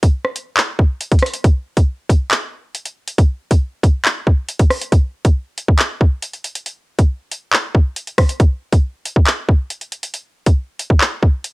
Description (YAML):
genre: hip hop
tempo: 138 BPM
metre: 4/4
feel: half-time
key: none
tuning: none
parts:
  - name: drill drum kit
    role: drums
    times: 0.0-11.5 s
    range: handclaps, hi-hat, kick drum, rim click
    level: -13 LUFS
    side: equal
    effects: none
room: little or no reverb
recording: home recording on cassette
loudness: -14 LUFS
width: side -23 dB against mid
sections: 0.0-4.9 A section; 4.9-11.5 B section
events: none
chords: none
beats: 0.14 0.57 1.01 | 1.44 1.88 2.31 2.75 | 3.18 3.62 4.05 4.49 | 4.92 5.36 5.79 6.22 | 6.66 7.09 7.53 7.96 | 8.40 8.83 9.27 9.70 | 10.14 10.57 11.01 11.44